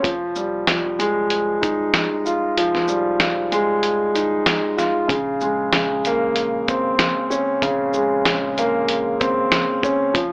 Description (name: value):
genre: hip hop, boom-bap hip-hop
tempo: 95 BPM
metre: 4/4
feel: swing 58% on 16ths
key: Bb dorian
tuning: A4 = 439 Hz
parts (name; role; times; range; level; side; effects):
- dark concert grand piano; accompaniment; 0.0-10.3 s; Db3 to F4; -21 LUFS; equal; cassette tape, high-pass filter, low-pass filter
- sub bass with octave; bass; 0.0-10.3 s; Eb1 to Bb1; -44 LUFS; equal; none
- dusty soul sampler-style drum kit; drums; 0.0-10.3 s; hi-hat, kick drum, shaker, snare drum; -23 LUFS; equal; none
room: light reverb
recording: AM radio sound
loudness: -20 LUFS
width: mono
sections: 0.0-5.1 A section; 5.1-10.3 A section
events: kick muted 2.6-5.1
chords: 0.0 Fm9; 5.1 Bbm9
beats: | 0.04 0.68 1.31 1.94 | 2.57 3.20 3.83 4.47 | 5.10 5.73 6.36 6.99 | 7.62 8.26 8.89 9.52 | 10.15